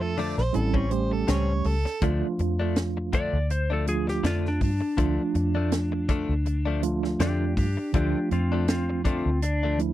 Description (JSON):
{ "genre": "straight-eighth soul blues", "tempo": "81 BPM", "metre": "4/4", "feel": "swing 55% on 16ths", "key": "D harmonic minor", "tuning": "A4 = 441 Hz", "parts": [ { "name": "clean lap steel guitar", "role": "melody", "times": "0.0-9.8 s", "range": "C4 to D5", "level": "-29 LUFS", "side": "left 1 dB", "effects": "none" }, { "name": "overdriven harmonica", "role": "second line", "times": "0.0-2.0 s", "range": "A4 to D5", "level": "-31 LUFS", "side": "right 4 dB", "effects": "none" }, { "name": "mellow tine electric piano", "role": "accompaniment", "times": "0.0-9.9 s", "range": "F3 to E5", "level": "-29 LUFS", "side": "right 5 dB", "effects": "medium stereo tremolo" }, { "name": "direct-recorded clean electric guitar", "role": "stabs", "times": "0.0-9.8 s", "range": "A2 to D4", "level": "-31 LUFS", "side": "left 6 dB", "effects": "wide subtle chorus" }, { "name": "vintage muted fingered electric bass", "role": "bass", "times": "0.0-9.9 s", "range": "A1 to G2", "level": "-27 LUFS", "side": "equal", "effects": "none" }, { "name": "tight funk drum kit", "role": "drums", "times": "0.2-9.9 s", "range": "hi-hat, kick drum, snare drum", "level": "-28 LUFS", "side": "equal", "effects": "none" } ], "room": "little or no reverb", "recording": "dry, close 1970s-style studio recording", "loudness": "-23 LUFS", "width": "side -14 dB against mid", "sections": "0.0-2.0 A section; 2.0-9.9 B section", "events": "electric slide guitar solo 2.0-9.9", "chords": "0.0 Dm; 0.5 A7#9; 2.0 Dm" }